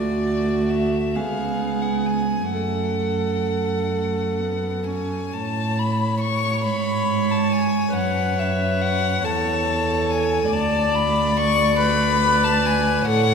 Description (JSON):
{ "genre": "classical, slow romantic movement for string quartet", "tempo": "42-48 BPM (dotted quarters)", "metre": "6/8", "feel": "rubato", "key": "F# minor, A major from 5.3 s", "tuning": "A4 = 442 Hz", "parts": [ { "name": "warm violin", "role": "melody", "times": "0.0-13.3 s", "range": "D5 to C#6", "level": "-24 LUFS", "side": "left 6 dB", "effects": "none" }, { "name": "rich violin", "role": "second line", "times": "0.0-13.3 s", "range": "F#4 to D5", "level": "-27 LUFS", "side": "right 1 dB", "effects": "none" }, { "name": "warm viola", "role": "accompaniment", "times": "0.0-13.3 s", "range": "A3 to D5", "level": "-26 LUFS", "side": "right 2 dB", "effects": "none" }, { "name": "warm cello", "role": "bass", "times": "0.0-13.3 s", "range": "C#2 to A2", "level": "-23 LUFS", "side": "right 2 dB", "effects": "none" } ], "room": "wet scoring stage reverb, RT60 1.9 s", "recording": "heard from further back in the room", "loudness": "-19 LUFS", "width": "side -6 dB against mid", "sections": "0.0-5.3 A section; 5.3-13.3 B section", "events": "none", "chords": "0.0 D; 1.2 C#7; 2.5 F#m; 5.3 A; 8.0 F#m; 10.5 Bm7/D", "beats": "1.15 | 2.51 3.93 | 5.34 6.65 | 7.96 9.25 | 10.52 11.80 | 13.07" }